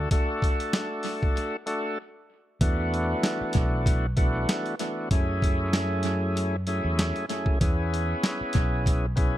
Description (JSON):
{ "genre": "hip hop, boom-bap hip-hop", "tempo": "96 BPM", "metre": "4/4", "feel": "swing 56% on 16ths", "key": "unclear", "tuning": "A4 = 440 Hz", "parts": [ { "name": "overdriven tonewheel organ", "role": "accompaniment", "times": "0.0-9.4 s", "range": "F#2 to A4", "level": "-28 LUFS", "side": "equal", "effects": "slow rotary speaker, cassette tape, high-pass filter, low-pass filter" }, { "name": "fingered electric bass", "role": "bass", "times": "0.0-9.4 s", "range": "B1 to F#2", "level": "-28 LUFS", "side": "equal", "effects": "none" }, { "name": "boom bap sampler-style drum kit", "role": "drums", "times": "0.1-9.3 s", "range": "hi-hat, kick drum, snare drum", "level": "-25 LUFS", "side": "equal", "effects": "tape echo" } ], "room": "digital ambience", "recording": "echo-heavy mix", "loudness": "-24 LUFS", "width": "side -13 dB against mid", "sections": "0.0-2.6 A section; 2.6-9.4 A section", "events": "break 2.0-2.6", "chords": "0.0 D; 2.6 E7sus4; 5.1 F#m7; 7.6 C#m7" }